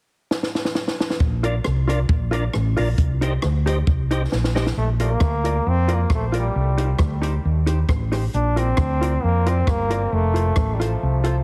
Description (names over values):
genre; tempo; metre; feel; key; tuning
ska; 135 BPM; 4/4; swing 54% on 8ths; Bb major; A4 = 439 Hz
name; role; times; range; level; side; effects
compact cocktail drum kit; drums; 0.3-11.3 s; hi-hat, kick drum, rim click, snare drum; -25 LUFS; equal; none
hollow-body short-scale fingered electric bass; bass; 1.2-11.4 s; F1 to F2; -23 LUFS; equal; none
hollow-body jazz guitar; accompaniment; 1.4-11.4 s; Eb4 to D5; -31 LUFS; equal; dub echo
percussive tonewheel organ; stabs; 1.4-4.7 s; D4 to Eb5; -33 LUFS; equal; overdrive, chorus vibrato, fast rotary speaker, dub echo
brilliant trombone; melody; 4.8-11.4 s; F3 to D4; -27 LUFS; equal; dub echo
room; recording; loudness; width
light reverb; heavily compressed radio sound, multiband compression; -21 LUFS; mono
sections
0.0-1.2 A section; 1.2-4.8 B section; 4.8-11.4 C section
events
drum fill 0.3-1.2, 4.3-4.8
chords
0.0 N.C.; 1.2 Bb; 3.0 Cm; 4.8 Bb; 6.5 Cm; 8.3 Bb; 10.1 F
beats
0.31 0.76 | 1.20 1.65 2.09 2.54 | 2.98 3.43 3.87 4.32 | 4.76 5.21 5.66 6.10 | 6.55 7.00 7.44 7.89 | 8.33 8.78 9.23 9.67 | 10.12 10.56 11.01